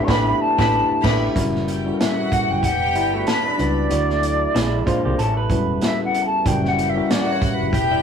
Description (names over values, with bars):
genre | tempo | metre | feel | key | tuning
lush 1970s-style soul | 94 BPM | 4/4 | swing 58% on 16ths | unclear | A4 = 440 Hz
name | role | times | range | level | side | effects
concert flute | melody | 0.0-8.0 s | B4 to C#6 | -22 LUFS | left 1 dB | none
tine electric piano | accompaniment | 0.0-7.8 s | G3 to D5 | -23 LUFS | left 2 dB | none
mellow French horn section | sustained chords | 0.0-8.0 s | C#3 to E4 | -30 LUFS | left 2 dB | none
clear studio string section | second line | 0.1-8.0 s | F#4 to B5 | -25 LUFS | left 2 dB | none
electric guitar through a small old amp | riff | 0.1-8.0 s | G3 to B4 | -27 LUFS | right 2 dB | spring reverb
hollow-body short-scale fingered electric bass | bass | 0.1-8.0 s | E1 to D2 | -25 LUFS | right 1 dB | none
vintage drum kit | drums | 0.1-7.9 s | crash cymbal, hi-hat, kick drum, snare drum | -23 LUFS | right 1 dB | none
room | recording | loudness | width
moderate small room reverb, RT60 0.5 s | rough rehearsal-room recording | -17 LUFS | side -7 dB against mid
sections
0.0-1.4 A section; 1.4-8.0 B section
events
band accent 0.0-1.4; flute solo 1.4-8.0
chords
0.0 A9sus4; 1.4 F#7b9; 2.6 Em9; 3.9 D; 4.5 Bb9; 5.2 A13; 6.5 F#7b9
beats
0.09 0.72 | 1.36 2.00 2.64 3.27 | 3.91 4.55 5.18 5.82 | 6.46 7.10 7.73